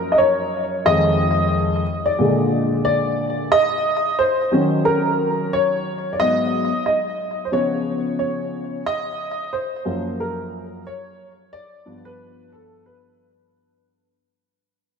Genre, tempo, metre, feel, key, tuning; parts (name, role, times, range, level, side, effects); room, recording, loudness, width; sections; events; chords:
hip hop; 90 BPM; 4/4; swing 59% on 16ths; A4 = 440 Hz
dark upright piano; solo; 0.0-14.2 s; F2 to Eb5; -18 LUFS; equal; analog chorus, ping-pong delay
wet church reverb, RT60 3.1 s; dreamy mix soaked in reverb; -18 LUFS; side -6 dB against mid
0.0-3.5 A section; 3.5-14.2 B section
upright piano solo 0.0-3.5, 3.5-14.2; fade-out 3.5-14.2
0.0 Gbmaj7; 0.9 Fm7; 2.2 Bb7; 3.5 Ebm7; 6.2 Abm7; 7.5 Db7; 8.9 Gbmaj7; 11.5 G7